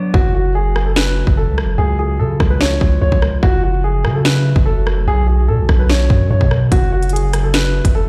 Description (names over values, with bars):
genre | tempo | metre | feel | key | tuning
hip hop, drill | 146 BPM | 4/4 | half-time | F# harmonic minor | A4 = 439 Hz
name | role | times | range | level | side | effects
dark grand piano | melody | 0.1-8.1 s | F#4 to C#5 | -23 LUFS | equal | tape echo
warbly tape-like pad | sustained chords | 0.1-8.1 s | C#3 to F#4 | -28 LUFS | equal | chorus, built-in reverb
long sustained 808-style bass | bass | 0.1-8.1 s | E#1 to C#3 | -18 LUFS | equal | none
drill drum kit | drums | 0.1-7.9 s | hi-hat, kick drum, rim click, snare drum | -18 LUFS | equal | none
room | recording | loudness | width
little or no reverb | played on a big sound system in a bare room, large studio reverb | -15 LUFS | mono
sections
0.1-8.1 A section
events
hi-hats muted 0.1-6.7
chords
0.1 F#m; 1.8 C#; 3.4 F#m; 5.1 Bm; 6.7 F#m